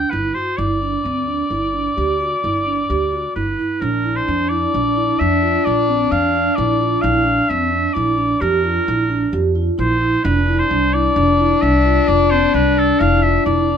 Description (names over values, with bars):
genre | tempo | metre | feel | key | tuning
contemporary instrumental, chamber music in an uneven meter | 131 BPM | 7/4 | straight | unclear | A4 = 436 Hz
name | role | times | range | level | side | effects
clear oboe | melody | 0.0-13.8 s | A4 to G5 | -19 LUFS | equal | none
vibraphone with soft mallets | arpeggios | 0.0-13.8 s | C4 to G4 | -20 LUFS | right 5 dB | none
upright bass | bass | 0.0-13.8 s | F1 to F2 | -21 LUFS | equal | none
warm French horn | second line | 3.8-13.8 s | D4 | -20 LUFS | left 11 dB | none
room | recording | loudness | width
moderate studio reverb, RT60 0.7 s | none | -15 LUFS | side -8 dB against mid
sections
0.0-3.8 A section; 3.8-13.8 B section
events
none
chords
0.0 G5; 3.8 Bb; 10.2 F5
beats
0.12 | 0.58 1.05 1.51 1.97 2.43 2.89 3.35 | 3.81 4.28 4.74 5.20 5.66 6.12 6.57 | 7.03 7.49 7.95 8.41 8.87 9.33 9.79 | 10.24 10.70 11.16 11.62 12.08 12.54 13.00 | 13.46